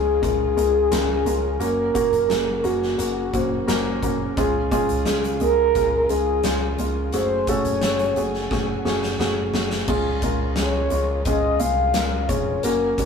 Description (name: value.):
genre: piano-driven pop.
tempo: 87 BPM.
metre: 4/4.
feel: straight.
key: Db major.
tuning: A4 = 440 Hz.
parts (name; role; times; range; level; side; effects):
mellow horn-like synth lead; melody; 0.0-13.1 s; Gb4 to F5; -21 LUFS; equal; chorus.
felt-muted upright piano; accompaniment; 0.0-13.1 s; Db3 to Db5; -24 LUFS; equal; none.
dark studio string section; sustained chords; 0.0-13.1 s; Ab3 to Ab5; -38 LUFS; equal; none.
overdriven picked electric bass; bass; 0.0-13.1 s; F1 to Db2; -28 LUFS; equal; none.
huge arena drum kit; drums; 0.2-13.1 s; crash cymbal, hi-hat, kick drum, snare drum; -28 LUFS; left 1 dB; none.
room: moderate small room ambience, RT60 0.5 s.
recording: rough rehearsal-room recording.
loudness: -19 LUFS.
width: side -6 dB against mid.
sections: 0.0-9.9 A section; 9.9-13.1 B section.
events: drum fill 8.5-9.9.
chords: 0.0 Db; 1.6 Gb; 4.4 Db; 7.1 Gbmadd9; 9.9 Db.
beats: 0.23 0.92 | 1.61 2.30 2.99 3.68 | 4.37 5.06 5.75 6.44 | 7.13 7.82 8.51 9.19 | 9.88 10.57 11.26 11.95 | 12.64.